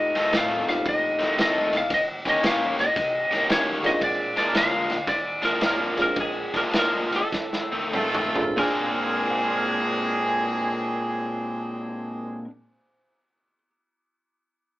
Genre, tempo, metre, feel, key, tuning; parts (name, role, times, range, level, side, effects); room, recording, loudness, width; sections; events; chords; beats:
electric blues shuffle; 92-114 BPM; 4/4; swing 66% on 8ths; Bb mixolydian; A4 = 439 Hz
lightly driven lead guitar; melody; 0.0-12.4 s; Ab4 to F5; -25 LUFS; left 1 dB
warm upright piano; accompaniment; 0.0-13.7 s; Bb2 to C7; -31 LUFS; right 1 dB
upright bass; bass; 0.0-12.4 s; F1 to Eb3; -44 LUFS; equal
bright horn section; stabs; 0.1-12.4 s; Ab3 to Db5; -27 LUFS; equal
crunchy breakbeat drum kit; drums; 0.1-8.8 s; kick drum, ride cymbal, snare drum, splash cymbal, toms; -27 LUFS; equal
crunchy overdriven guitar; riff; 0.2-12.5 s; F2 to G4; -28 LUFS; left 1 dB
moderate small room reverb, RT60 0.5 s; band playing live in one room, AM radio sound; -21 LUFS; side -17 dB against mid
0.0-8.6 A section; 8.6-13.8 B section
slowing down 4.0-8.6; drum fill 7.3-8.6
0.0 F7; 1.9 Eb7; 4.0 Bb7; 7.3 F7; 8.6 Bb9
0.33 0.85 1.38 | 1.91 2.43 2.96 3.48 | 4.01 4.54 5.07 5.61 | 6.17 6.74 7.33 7.94 | 8.58 9.23 9.89 10.54 | 11.20 11.85 12.50 13.16